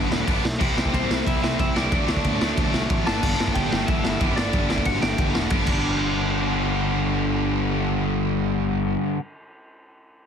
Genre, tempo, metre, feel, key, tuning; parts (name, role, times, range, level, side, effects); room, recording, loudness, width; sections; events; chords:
punk rock; 184 BPM; 4/4; straight; G major; A4 = 437 Hz
distorted electric guitar; riff; 0.0-9.2 s; G2 to E4; -24 LUFS; left 1 dB; overdrive
fuzz picked electric bass; bass; 0.0-9.0 s; E1 to D2; -28 LUFS; equal; overdrive
raw garage drum kit; drums; 0.1-5.8 s; crash cymbal, kick drum, ride cymbal, snare drum; -25 LUFS; equal
lightly driven lead guitar; melody; 0.9-5.3 s; C4 to A5; -30 LUFS; equal; tape echo
little or no reverb; dense, heavily limited modern master; -20 LUFS; side -7 dB against mid
0.0-5.8 A section; 5.8-8.4 B section
drum fill 5.7
0.0 G; 0.6 C; 1.9 D; 3.1 G